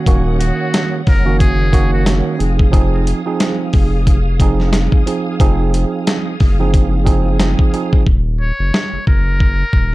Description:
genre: hip hop, boom-bap hip-hop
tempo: 90 BPM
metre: 4/4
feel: swing 58% on 16ths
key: Eb dorian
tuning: A4 = 440 Hz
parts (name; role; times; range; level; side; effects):
- barky tine electric piano; accompaniment; 0.0-8.0 s; Eb3 to Ab4; -18 LUFS; right 5 dB; cassette tape, high-pass filter, low-pass filter
- bright tonewheel organ; sustained chords; 0.0-8.0 s; Ab4 to Eb6; -29 LUFS; equal; chorus vibrato, slow rotary speaker, high-pass filter, low-pass filter
- saturated sub bass; bass; 0.1-9.9 s; Eb1 to Gb1; -16 LUFS; equal; none
- dusty soul sampler-style drum kit; drums; 0.1-9.9 s; hi-hat, kick drum, snare drum; -14 LUFS; equal; none
- trumpet with metal mute; melody; 0.4-2.1, 8.4-9.9 s; Gb4 to Db5; -24 LUFS; left 1 dB; high-pass filter, low-pass filter, tape echo
room: little or no reverb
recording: dark, warm production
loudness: -12 LUFS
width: side -18 dB against mid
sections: 0.0-8.1 A section; 8.1-9.9 B section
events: hi-hats muted 8.1-9.9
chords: 0.0 Ebm7; 2.4 Fm7; 8.1 Ebm7

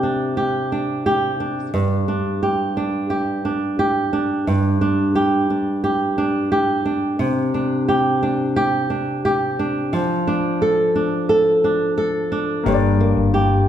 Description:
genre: acoustic pop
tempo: 88 BPM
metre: 4/4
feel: straight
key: G minor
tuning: A4 = 440 Hz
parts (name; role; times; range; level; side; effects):
- flamenco guitar; accompaniment; 0.0-13.7 s; G2 to A4; -18 LUFS; right 1 dB; none
- warm baby grand piano; accompaniment; 12.6-13.7 s; Bb3 to D5; -22 LUFS; left 6 dB; none
- hollow-body short-scale fingered electric bass; bass; 12.7-13.7 s; G1; -18 LUFS; left 2 dB; none
room: wet recital hall reverb, RT60 1.7 s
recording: recorded in a church or concert hall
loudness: -17 LUFS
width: side -10 dB against mid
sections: 0.0-12.7 A section; 12.7-13.7 B section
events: none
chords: 0.0 Csus2; 1.7 G5; 7.2 Csus2; 9.9 F6; 12.7 Gm

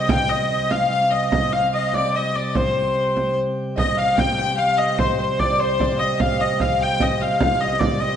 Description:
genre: medieval dance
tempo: 98 BPM (dotted quarters)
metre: 6/8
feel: straight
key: C minor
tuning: A4 = 441 Hz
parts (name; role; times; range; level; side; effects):
- clear hurdy-gurdy; melody; 0.0-8.2 s; C5 to G5; -21 LUFS; left 3 dB; none
- clear fiddle; second line; 0.0-8.2 s; C5 to G5; -28 LUFS; left 4 dB; none
- concert harp; second line; 0.0-8.2 s; C5 to G5; -26 LUFS; right 5 dB; tape echo
- pipe organ, plenum; drone; 0.0-8.2 s; C3 to G3; -26 LUFS; right 1 dB; none
- frame drum; percussion; 0.1-8.0 s; none; -24 LUFS; right 2 dB; none
room: wet recital hall reverb, RT60 1.3 s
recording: dark, warm production, nothing above 10.4 kHz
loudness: -18 LUFS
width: side -8 dB against mid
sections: 0.0-3.8 A section; 3.8-8.2 B section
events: speeding up 0.0-8.2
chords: none

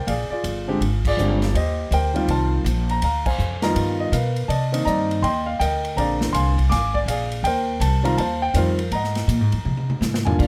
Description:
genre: jazz piano trio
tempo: 163 BPM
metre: 4/4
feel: swing 64% on 8ths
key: Bb major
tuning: A4 = 440 Hz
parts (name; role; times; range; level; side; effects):
- warm grand piano; melody; 0.0-10.5 s; D3 to D6; -25 LUFS; equal; none
- upright bass; bass; 0.0-10.5 s; G1 to C3; -24 LUFS; equal; none
- swinging big-band drum kit; drums; 0.1-10.5 s; crash cymbal, hi-hat, kick drum, ride cymbal, snare drum, toms; -31 LUFS; equal; none
room: light reverb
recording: none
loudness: -21 LUFS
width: mono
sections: 0.0-10.4 A section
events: band accent 1.0, 3.2; drum fill 9.7-10.4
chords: 0.1 Bb13; 1.5 Eb69; 3.0 Dm7b5; 3.8 G7alt; 4.5 Cm9; 6.0 Bb9; 7.4 Eb69; 8.9 Ab9

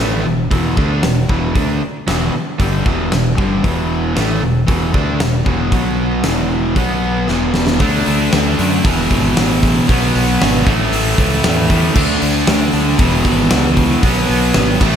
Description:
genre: hard rock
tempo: 115 BPM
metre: 4/4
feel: straight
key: unclear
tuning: A4 = 436 Hz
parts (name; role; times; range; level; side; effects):
- cranked stack guitar; riff; 0.0-15.0 s; E2 to D4; -19 LUFS; right 8 dB; overdrive, slapback echo
- overdriven electric guitar; riff; 0.0-15.0 s; E2 to D4; -19 LUFS; left 8 dB; slapback echo
- growling fingered electric bass; bass; 0.0-15.0 s; E1 to F#2; -20 LUFS; equal; overdrive
- big rock drum kit; drums; 0.5-14.9 s; crash cymbal, hi-hat, kick drum, snare drum; -18 LUFS; equal; none
- heavy high-gain guitar; riff; 7.8-15.0 s; E2 to D4; -21 LUFS; right 1 dB; distortion
room: moderate lush hall reverb, RT60 1.6 s, small room ambience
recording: big arena sound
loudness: -12 LUFS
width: side -8 dB against mid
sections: 0.0-7.8 A section; 7.8-15.0 B section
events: drum fill 7.3-7.8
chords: 0.0 E5; 5.7 B5; 6.2 E5; 6.8 B5; 7.3 E5; 7.8 D; 8.8 E; 9.9 B5; 10.7 A; 12.0 D5; 13.0 E; 14.0 B5

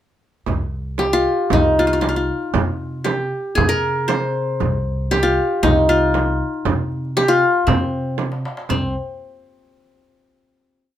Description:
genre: Arabic maqam ensemble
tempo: 117 BPM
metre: 4/4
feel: straight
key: C minor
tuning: A4 = 444 Hz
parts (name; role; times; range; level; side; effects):
- upright bass; bass; 0.5-8.9 s; C2 to C3; -23 LUFS; equal; none
- darbuka; percussion; 0.5-8.9 s; none; -27 LUFS; left 1 dB; none
- frame drum; percussion; 0.5-8.9 s; none; -23 LUFS; right 7 dB; none
- qanun; melody; 1.0-8.9 s; C4 to C5; -18 LUFS; left 2 dB; none
room: light reverb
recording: minimal, uncompressed stereo recording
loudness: -16 LUFS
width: side -11 dB against mid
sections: 0.5-8.7 A section; 8.7-10.7 final note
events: drum fill 8.2-8.7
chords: none

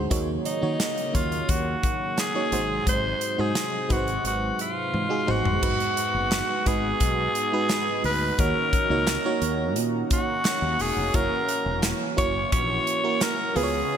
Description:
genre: 1980s-style pop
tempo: 87 BPM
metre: 4/4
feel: straight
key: unclear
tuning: A4 = 441 Hz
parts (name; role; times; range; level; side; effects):
- FM electric piano; accompaniment; 0.0-14.0 s; Ab2 to Db5; -29 LUFS; right 3 dB; chorus
- warm analog pad; sustained chords; 0.0-14.0 s; C3 to Gb4; -34 LUFS; equal; chorus
- mellow fretless electric bass; bass; 0.0-13.8 s; Fb1 to Eb3; -30 LUFS; left 1 dB; none
- modern studio drum kit; drums; 0.1-13.7 s; crash cymbal, hi-hat, kick drum, snare drum, toms; -28 LUFS; equal; gated reverb
- raspy alto saxophone; melody; 0.5-14.0 s; Eb4 to Db5; -26 LUFS; equal; digital delay
- group handclap; percussion; 6.3-13.4 s; none; -41 LUFS; left 5 dB; none
room: moderate lush hall reverb, RT60 2.5 s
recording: bright 1980s-style digital production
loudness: -22 LUFS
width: side -8 dB against mid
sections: 0.0-5.6 A section; 5.6-14.0 B section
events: drum fill 4.9-5.6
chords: 0.1 Ebm7; 2.5 Ab7; 5.6 Abm7; 8.4 Ebm7; 11.1 Gb7

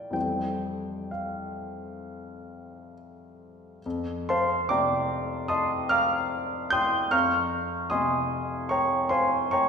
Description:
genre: classical, impressionist solo piano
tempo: 62-78 BPM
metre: 4/4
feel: rubato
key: unclear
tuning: A4 = 437 Hz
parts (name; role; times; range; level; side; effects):
- clear grand piano; solo; 0.0-9.7 s; F2 to G6; -25 LUFS; equal; none
room: wet recital hall reverb, RT60 1.7 s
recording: recorded in a church or concert hall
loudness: -24 LUFS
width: side -6 dB against mid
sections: 0.0-3.8 A section; 3.8-9.7 A section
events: none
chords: 0.1 Fmaj9; 3.8 Fadd9; 7.1 Dbmaj7/F

